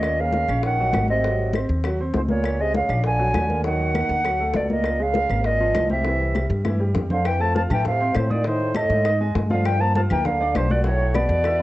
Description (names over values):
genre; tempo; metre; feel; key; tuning
Afro-Cuban jazz; 200 BPM; 4/4; straight; Db major; A4 = 442 Hz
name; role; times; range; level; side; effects
silver concert flute; melody; 0.0-11.6 s; C5 to A5; -23 LUFS; equal; cassette tape
trombone with cup mute; second line; 0.0-11.6 s; G2 to F3; -30 LUFS; right 2 dB; cassette tape
warm baby grand piano; accompaniment; 0.0-11.6 s; Eb3 to Gb6; -28 LUFS; right 1 dB; cassette tape
upright bass; bass; 0.0-11.6 s; Ab1 to A2; -24 LUFS; equal; none
bongos; percussion; 0.0-11.6 s; none; -32 LUFS; left 6 dB; none
claves; percussion; 0.0-11.6 s; none; -39 LUFS; left 6 dB; none
congas; percussion; 0.0-11.6 s; none; -28 LUFS; left 1 dB; none
room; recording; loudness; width
light reverb, small room reverb; home recording on cassette, nothing above 8.0 kHz; -19 LUFS; side -16 dB against mid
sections
0.0-7.3 A section; 7.3-11.6 B section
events
drum fill 6.7-7.3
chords
0.0 Ab7; 2.4 Db6; 3.0 Bbaug7; 3.6 Ebm; 4.2 D; 4.8 Db6; 6.1 C; 7.3 F; 8.5 Adim; 9.1 Ab5; 9.7 Gm7; 10.9 Bm7